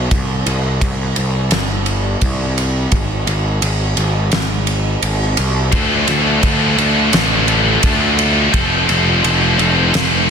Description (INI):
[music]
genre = quiet-loud alternative rock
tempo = 85 BPM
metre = 4/4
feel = straight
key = unclear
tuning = A4 = 438 Hz
[part]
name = fuzz picked electric bass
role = bass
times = 0.0-10.3 s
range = F1 to D2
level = -17 LUFS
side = equal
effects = overdrive
[part]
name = loose indie drum kit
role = drums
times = 0.1-10.1 s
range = kick drum, ride cymbal, snare drum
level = -18 LUFS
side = right 1 dB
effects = none
[part]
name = scooped high-gain guitar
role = riff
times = 5.7-10.3 s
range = D3 to A4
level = -14 LUFS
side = left 1 dB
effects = distortion
[sound]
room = light reverb, small room ambience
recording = dense, heavily limited modern master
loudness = -13 LUFS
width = side -6 dB against mid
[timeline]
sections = 0.0-10.3 A section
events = half time 0.0-10.3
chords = 0.1 C5; 2.9 N.C.; 5.7 Dm; 8.5 F